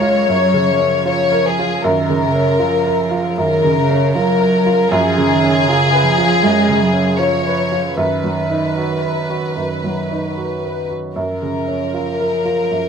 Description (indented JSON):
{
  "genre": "neoclassical piano and strings",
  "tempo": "77 BPM",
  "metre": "4/4",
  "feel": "rubato",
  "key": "F# major",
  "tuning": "A4 = 440 Hz",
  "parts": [
    { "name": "warm chamber violin section", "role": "melody", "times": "0.0-12.9 s", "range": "G#4 to C#5", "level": "-17 LUFS", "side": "left 4 dB", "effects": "none" },
    { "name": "dark cello", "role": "second line", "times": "0.0-12.9 s", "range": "C#3 to G#3", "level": "-20 LUFS", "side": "right 4 dB", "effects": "none" },
    { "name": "warm upright piano", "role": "accompaniment", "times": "0.0-12.9 s", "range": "F#2 to B4", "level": "-19 LUFS", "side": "right 3 dB", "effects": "none" }
  ],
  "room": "light reverb",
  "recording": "minimal, uncompressed stereo recording",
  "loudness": "-14 LUFS",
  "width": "side -6 dB against mid",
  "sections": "0.0-12.9 A section",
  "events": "none",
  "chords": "0.0 F#maj7; 4.9 C#7/F#; 8.0 B/F#; 11.2 F#maj7",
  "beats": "0.29 1.07 | 1.84 2.62 3.39 4.15 | 4.91 5.67 6.42 7.19 | 7.99 8.79 9.58 10.37 | 11.15 11.93 12.71"
}